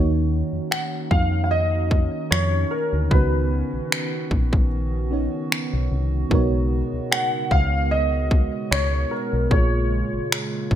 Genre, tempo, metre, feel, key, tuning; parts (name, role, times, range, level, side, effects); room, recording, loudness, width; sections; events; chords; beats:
contemporary R&B; 75 BPM; 4/4; swing 54% on 16ths; Eb minor; A4 = 445 Hz
mellow FM electric piano; accompaniment; 0.0-10.8 s; Bb2 to Db5; -28 LUFS; right 2 dB; chorus
hollow soft pad; sustained chords; 0.0-10.8 s; Db3 to Gb4; -30 LUFS; right 2 dB; chorus, sidechain pumping
solid FM bass; bass; 0.0-10.8 s; Ab1 to F2; -23 LUFS; equal
warm grand piano; melody; 0.7-10.8 s; Bb4 to Gb5; -25 LUFS; equal; analog chorus
trap drum kit; drums; 0.7-10.8 s; finger snaps, kick drum; -21 LUFS; equal; gated reverb
light reverb; bright 1980s-style digital production; -19 LUFS; side -10 dB against mid
0.0-10.8 A section
0.0 Ebm9; 3.1 Db13sus4; 6.3 Abm11/Cb; 9.5 Bbm7
0.71 1.51 2.31 | 3.11 3.91 4.71 5.51 | 6.31 7.11 7.91 8.71 | 9.51 10.31